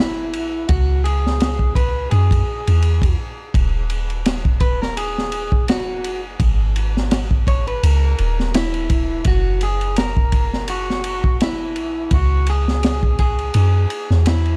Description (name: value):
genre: trip hop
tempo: 84 BPM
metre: 4/4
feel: swing 56% on 16ths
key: unclear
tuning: A4 = 439 Hz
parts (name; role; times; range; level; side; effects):
- electric guitar at the edge of break-up; melody; 0.0-14.6 s; Fb4 to Db5; -27 LUFS; equal; dub echo
- soft 808-style bass; bass; 0.0-14.6 s; Eb1 to Gb2; -21 LUFS; equal; none
- crunchy breakbeat drum kit; drums; 0.0-14.6 s; kick drum, ride cymbal, snare drum; -22 LUFS; equal; none
room: little or no reverb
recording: dark, warm production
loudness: -19 LUFS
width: mono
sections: 0.0-14.6 A section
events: none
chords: 0.0 Gb7; 0.7 Dbm; 3.5 N.C.; 6.4 Absus2; 9.3 Gb7; 12.1 Dbm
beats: | 0.68 1.40 2.11 2.83 | 3.54 4.26 4.97 5.68 | 6.40 7.11 7.83 8.54 | 9.26 9.97 10.68 11.40 | 12.11 12.83 13.54 14.26